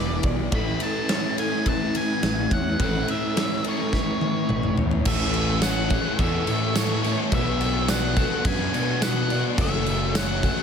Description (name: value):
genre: rock, shoegaze and dream pop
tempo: 106 BPM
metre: 4/4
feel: straight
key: A major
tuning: A4 = 440 Hz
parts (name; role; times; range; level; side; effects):
- octave-fuzz lead guitar; melody; 0.0-10.6 s; C#5 to B5; -30 LUFS; equal; distortion, analog delay
- electric guitar through a small old amp; arpeggios; 0.0-10.6 s; G#4 to D5; -34 LUFS; equal; ensemble chorus, analog delay
- crunchy overdriven guitar; riff; 0.0-10.6 s; E2 to A4; -28 LUFS; left 12 dB; wide subtle chorus
- raw garage guitar; riff; 0.0-10.6 s; F#2 to D5; -30 LUFS; right 14 dB; overdrive, reverse reverb
- fuzz picked electric bass; bass; 0.0-10.5 s; E1 to B2; -27 LUFS; equal; overdrive
- big rock drum kit; drums; 0.2-10.6 s; crash cymbal, kick drum, ride cymbal, snare drum, toms; -26 LUFS; equal; none
- tambourine; percussion; 5.6-10.3 s; none; -35 LUFS; right 15 dB; none
room: small room reverb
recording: none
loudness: -21 LUFS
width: side -7 dB against mid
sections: 0.0-5.1 A section; 5.1-10.6 B section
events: drum fill 3.9-5.1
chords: 0.0 E7; 0.5 Aadd9; 5.1 A; 7.3 Bm; 9.6 F#m